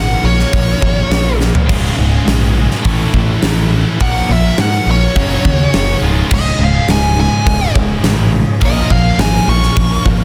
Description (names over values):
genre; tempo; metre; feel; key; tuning
hard rock; 104 BPM; 4/4; straight; unclear; A4 = 440 Hz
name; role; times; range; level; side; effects
nasal lead guitar with a parked wah; melody; 0.0-10.0 s; Db5 to Db6; -21 LUFS; equal; overdrive, digital delay
overdriven tonewheel organ; sustained chords; 0.0-10.2 s; Gb3 to Eb5; -32 LUFS; equal; none
cranked stack guitar; riff; 0.0-10.2 s; Db2 to Bb3; -23 LUFS; equal; none
distorted electric guitar; riff; 0.0-10.2 s; Db2 to Bb4; -24 LUFS; equal; overdrive
growling picked electric bass; bass; 0.0-10.2 s; Db1 to Ab2; -18 LUFS; equal; overdrive
huge arena drum kit; drums; 0.4-10.2 s; crash cymbal, hi-hat, kick drum, snare drum, toms; -18 LUFS; equal; none
distorted electric guitar; riff; 1.7-10.2 s; Db2 to Bb3; -22 LUFS; equal; distortion
room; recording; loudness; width
light reverb; dense, heavily limited modern master; -13 LUFS; mono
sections
0.0-10.2 A section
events
lead electric guitar solo 0.0-10.2; drum fill 1.4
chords
0.0 Bbm7; 1.7 Db; 2.8 A; 4.0 Bbm7; 5.2 Gb; 6.0 Db; 8.6 Bbm7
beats
0.54 1.11 | 1.69 2.27 2.85 3.42 | 4.00 4.58 5.16 5.73 | 6.31 6.88 7.46 8.04 | 8.61 9.19 9.77